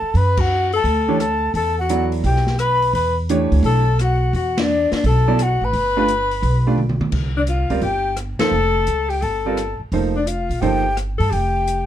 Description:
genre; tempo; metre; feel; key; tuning
modal jazz; 172 BPM; 4/4; swing 65% on 8ths; C dorian from 7.1 s; A4 = 440 Hz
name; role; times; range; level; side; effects
breathy mellow concert flute; melody; 0.0-11.9 s; D5 to B5; -22 LUFS; left 1 dB; none
warm alto saxophone; second line; 0.0-11.9 s; D4 to B4; -23 LUFS; left 5 dB; none
upright bass; bass; 0.0-11.9 s; F1 to G2; -20 LUFS; equal; none
open jazz drum kit; drums; 0.1-11.8 s; crash cymbal, hi-hat, kick drum, ride cymbal, rim click, snare drum, toms; -27 LUFS; equal; none
clear concert grand piano; accompaniment; 1.1-10.8 s; E3 to D5; -21 LUFS; right 4 dB; none
room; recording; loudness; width
light reverb; dark, warm production; -16 LUFS; side -11 dB against mid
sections
0.0-7.1 A section; 7.1-11.9 B section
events
band accent 0.3, 4.5, 8.4; drum fill 6.8-7.1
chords
0.0 Bm7; 1.5 Em11; 5.7 G7; 7.1 C7sus4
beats
| 0.15 0.50 0.85 1.20 | 1.54 1.90 2.25 2.60 | 2.94 3.29 3.64 3.99 | 4.34 4.69 5.04 5.39 | 5.74 6.09 6.44 6.79 | 7.14 7.49 7.83 8.19 | 8.53 8.88 9.23 9.58 | 9.93 10.28 10.63 10.98 | 11.33 11.68

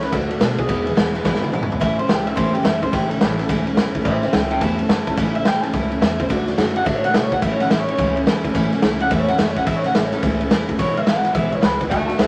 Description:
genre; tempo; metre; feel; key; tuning
rockabilly; 214 BPM; 4/4; swing 63% on 8ths; A major; A4 = 439 Hz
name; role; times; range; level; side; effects
electric guitar through a small old amp; melody; 0.0-12.3 s; G4 to A5; -25 LUFS; equal; none
picked steel-string acoustic guitar; accompaniment; 0.0-12.3 s; E2 to F#4; -24 LUFS; equal; none
upright bass; bass; 0.0-12.3 s; E1 to B2; -32 LUFS; equal; none
raw garage drum kit; drums; 0.0-12.3 s; kick drum, ride cymbal, snare drum, toms; -22 LUFS; equal; none
room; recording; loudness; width
moderate studio reverb, RT60 0.8 s; vinyl crackle; -19 LUFS; mono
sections
0.0-1.8 A section; 1.8-12.3 B section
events
drum fill 1.2-1.8; clean electric guitar solo 1.8-12.3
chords
0.1 D; 0.7 E; 1.8 A; 6.3 D; 7.4 A; 10.8 E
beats
0.12 0.40 | 0.68 0.96 1.25 1.53 | 1.81 2.09 2.37 2.65 | 2.93 3.21 3.49 3.77 | 4.05 4.33 4.62 4.90 | 5.18 5.46 5.74 6.02 | 6.30 6.58 6.86 7.14 | 7.42 7.70 7.98 8.26 | 8.54 8.83 9.11 9.39 | 9.67 9.95 10.23 10.51 | 10.79 11.07 11.35 11.63 | 11.91 12.19

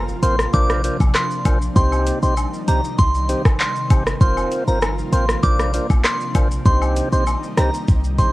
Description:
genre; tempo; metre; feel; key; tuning
dancehall; 98 BPM; 4/4; straight; C minor; A4 = 440 Hz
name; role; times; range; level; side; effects
ethereal airy pad; sustained chords; 0.0-8.3 s; C3 to F4; -28 LUFS; equal; ensemble chorus, built-in reverb, cassette tape
clean 808-style bass; bass; 0.0-8.2 s; F1 to C2; -20 LUFS; equal; none
impact; sound effects; 0.0-1.8 s; none; -39 LUFS; equal; none
island pop drum kit; drums; 0.1-8.3 s; handclaps, hi-hat, kick drum, rim click, shaker; -18 LUFS; equal; overdrive, cassette tape
glassy synth bell; melody; 0.2-8.3 s; Bb5 to D6; -24 LUFS; equal; chorus, tape echo
tonewheel organ; accompaniment; 0.2-8.3 s; C4 to C5; -25 LUFS; equal; overdrive, slow rotary speaker, sidechain pumping, cassette tape
cabasa and woodblock; percussion; 0.2-8.3 s; none; -32 LUFS; left 7 dB; none
room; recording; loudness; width
digital ambience; home recording on cassette; -16 LUFS; side -18 dB against mid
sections
0.0-8.3 A section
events
impact 0.0-1.8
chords
0.0 Fsus4; 0.5 Bbadd9; 1.8 Cm; 4.2 Fsus4; 5.4 Bbadd9; 6.7 Cm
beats
0.54 1.15 | 1.76 2.37 2.98 3.60 | 4.21 4.82 5.43 6.04 | 6.66 7.27 7.88

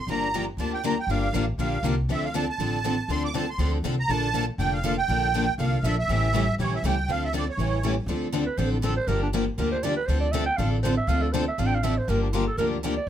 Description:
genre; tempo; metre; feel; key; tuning
acoustic string swing (jazz manouche); 240 BPM; 4/4; swing 57% on 8ths; D minor; A4 = 437 Hz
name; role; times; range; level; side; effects
musette accordion; melody; 0.0-7.9 s; C#5 to D6; -28 LUFS; right 4 dB; none
picked steel-string acoustic guitar; accompaniment; 0.1-12.9 s; C#3 to A4; -29 LUFS; left 6 dB; none
picked steel-string acoustic guitar; accompaniment; 0.1-12.9 s; D3 to A4; -31 LUFS; right 4 dB; none
upright bass; bass; 0.1-13.1 s; F1 to D2; -27 LUFS; equal; none
growling clarinet; second line; 8.5-13.1 s; D4 to G5; -28 LUFS; right 3 dB; none
room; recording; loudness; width
light reverb; close, detailed microphones; -23 LUFS; side -10 dB against mid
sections
0.0-8.1 A section; 8.1-13.1 B section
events
clarinet solo 8.1-13.1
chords
0.1 Gm7; 2.1 Dm7; 4.1 Bbmaj7; 6.1 A7b9; 7.1 Dm7; 7.6 A7; 8.1 Dm7; 9.1 Gm7; 10.1 Dm7; 12.1 Gm7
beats
| 0.08 0.33 0.58 0.83 | 1.08 1.33 1.58 1.83 | 2.08 2.33 2.58 2.83 | 3.08 3.33 3.58 3.83 | 4.08 4.33 4.58 4.83 | 5.08 5.33 5.58 5.83 | 6.08 6.33 6.58 6.83 | 7.08 7.33 7.58 7.83 | 8.08 8.33 8.58 8.83 | 9.08 9.33 9.58 9.83 | 10.08 10.33 10.58 10.83 | 11.08 11.33 11.58 11.83 | 12.08 12.33 12.58 12.83 | 13.08

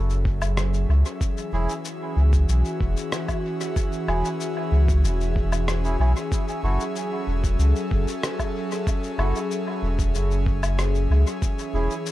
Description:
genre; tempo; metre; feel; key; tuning
ambient dub; 94 BPM; 4/4; straight; F# minor; A4 = 440 Hz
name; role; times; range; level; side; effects
airy breathy pad; sustained chords; 0.0-12.1 s; E3 to E5; -28 LUFS; equal; chorus
warm sub bass; bass; 0.0-11.9 s; E1 to C#2; -20 LUFS; equal; none
electronic shaker, woodblock and rim click; drums; 0.1-12.1 s; none; -33 LUFS; left 2 dB; dub echo
electronic kick drum; drums; 0.3-11.6 s; none; -25 LUFS; equal; none
melodica; stabs; 1.5-11.9 s; C#4 to A4; -34 LUFS; right 2 dB; dub echo
room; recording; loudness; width
little or no reverb; echo-heavy mix; -21 LUFS; side -15 dB against mid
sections
0.0-12.1 A section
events
none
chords
0.0 F#m7; 1.2 E6; 6.3 F#m7; 11.4 E6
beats
0.57 | 1.21 1.85 2.49 3.12 | 3.76 4.40 5.04 5.68 | 6.32 6.95 7.59 8.23 | 8.87 9.51 10.14 10.78 | 11.42 12.06

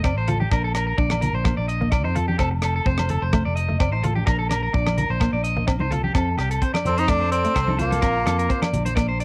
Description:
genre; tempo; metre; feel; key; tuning
highlife guitar band; 128 BPM; 4/4; straight; F mixolydian; A4 = 441 Hz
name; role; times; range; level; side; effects
clean electric guitar; accompaniment; 0.0-9.1 s; A3 to F4; -31 LUFS; equal; analog chorus
electric guitar at the edge of break-up; arpeggios; 0.0-9.2 s; G4 to Eb5; -29 LUFS; equal; analog delay
fingered electric bass; bass; 0.0-9.2 s; F1 to F2; -27 LUFS; equal; none
tight funk drum kit; drums; 0.0-9.2 s; hi-hat, kick drum, rim click; -27 LUFS; equal; none
agogo bells; percussion; 0.0-9.1 s; none; -36 LUFS; equal; none
congas; percussion; 0.3-9.0 s; none; -30 LUFS; equal; none
edgy tenor saxophone; melody; 6.9-8.7 s; Bb3 to Eb4; -25 LUFS; equal; cassette tape
mellow trumpet; second line; 6.9-8.7 s; F4 to C5; -36 LUFS; equal; analog delay
room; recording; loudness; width
little or no reverb; home recording on cassette; -22 LUFS; mono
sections
0.0-6.1 A section; 6.1-9.2 B section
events
none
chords
0.0 Fadd9; 0.5 Bbadd9; 2.4 F; 4.3 Bbadd9; 6.1 F; 8.0 Bbadd9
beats
0.05 | 0.52 0.99 1.46 1.93 | 2.40 2.86 3.33 3.80 | 4.27 4.74 5.21 5.68 | 6.15 6.62 7.09 7.56 | 8.03 8.50 8.97

